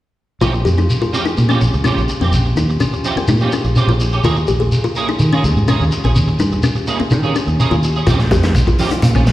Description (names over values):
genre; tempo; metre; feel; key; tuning
afrobeat; 125 BPM; 4/4; straight; Bb dorian; A4 = 440 Hz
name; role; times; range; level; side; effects
kalimba; arpeggios; 0.4-9.2 s; C4 to Ab4; -20 LUFS; left 4 dB; slapback echo
electric guitar at the edge of break-up; stabs; 0.4-9.3 s; F3 to Ab4; -21 LUFS; right 4 dB; ensemble chorus, slapback echo
fingered electric bass; bass; 0.4-9.3 s; Bb1 to Eb3; -15 LUFS; equal; none
shekere; percussion; 0.4-9.3 s; none; -20 LUFS; equal; none
crunchy breakbeat drum kit; drums; 8.1-9.3 s; hi-hat, kick drum, snare drum; -16 LUFS; equal; none
congas; percussion; 8.3-9.2 s; none; -22 LUFS; right 1 dB; slapback echo
room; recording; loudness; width
little or no reverb; live gig heard through the venue's PA, recital hall reverb; -13 LUFS; side -15 dB against mid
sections
0.4-9.3 A section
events
none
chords
0.4 Bbm69; 4.2 Eb7sus4; 8.1 Bbm69